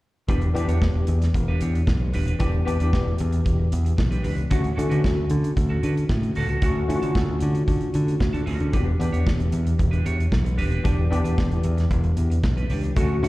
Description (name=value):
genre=disco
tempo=114 BPM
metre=4/4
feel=straight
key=E dorian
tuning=A4 = 440 Hz
part: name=semi-hollow electric guitar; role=accompaniment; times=0.3-13.3 s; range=C#4 to C#5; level=-33 LUFS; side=right 3 dB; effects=harmonic tremolo, slapback echo
part: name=tine electric piano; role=accompaniment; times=0.3-13.3 s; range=D3 to G4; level=-27 LUFS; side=left 2 dB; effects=ensemble chorus
part: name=modern bright fingered electric bass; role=bass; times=0.3-13.3 s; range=D#1 to D3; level=-22 LUFS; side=equal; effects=none
part: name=modern studio drum kit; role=drums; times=0.3-13.3 s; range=hi-hat, kick drum, snare drum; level=-25 LUFS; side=equal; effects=none
room=little or no reverb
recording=live gig heard through the venue's PA, recital hall reverb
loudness=-20 LUFS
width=side -18 dB against mid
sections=0.3-13.3 A section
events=none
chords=0.3 Em7; 4.5 Dmaj7; 8.7 Em7